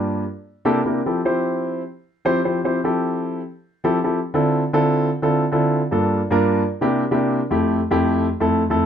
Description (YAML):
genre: jazz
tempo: 151 BPM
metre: 4/4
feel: straight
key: F major, D minor from 4.2 s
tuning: A4 = 440 Hz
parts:
  - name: dark concert grand piano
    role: solo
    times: 0.0-8.9 s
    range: F2 to C5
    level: -18 LUFS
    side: equal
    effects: none
room: moderate studio reverb, RT60 0.5 s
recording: dark, warm production, nothing above 10.8 kHz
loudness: -18 LUFS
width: side -8 dB against mid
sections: 0.0-4.2 A section; 4.2-8.9 B section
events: none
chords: 0.3 C13; 1.1 Fmaj9; 4.2 Dm9; 5.8 Gm9; 6.6 C9; 7.4 Fmaj7